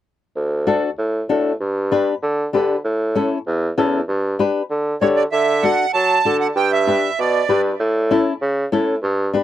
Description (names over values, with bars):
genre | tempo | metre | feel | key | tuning
latin | 194 BPM | 4/4 | straight | D major | A4 = 442 Hz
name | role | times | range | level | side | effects
warm bassoon | bass | 0.4-9.3 s | D2 to F#3 | -20 LUFS | right 1 dB | none
flamenco guitar | accompaniment | 0.7-9.4 s | C#4 to C#5 | -18 LUFS | left 4 dB | none
accordion | melody | 5.0-7.6 s | C#5 to A5 | -18 LUFS | right 6 dB | light tremolo tuning, tape echo
room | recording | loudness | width
light reverb | dry, close 1970s-style studio recording | -16 LUFS | side -12 dB against mid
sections
0.4-5.3 A section; 5.3-9.4 B section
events
none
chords
0.4 D; 1.6 G; 2.8 A; 4.1 G; 5.3 D; 6.6 G; 7.8 A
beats
| 0.37 0.68 0.99 1.30 | 1.61 1.92 2.23 2.54 | 2.85 3.16 3.47 3.77 | 4.08 4.39 4.70 5.01 | 5.32 5.63 5.94 6.25 | 6.56 6.87 7.18 7.49 | 7.80 8.11 8.41 8.72 | 9.03 9.34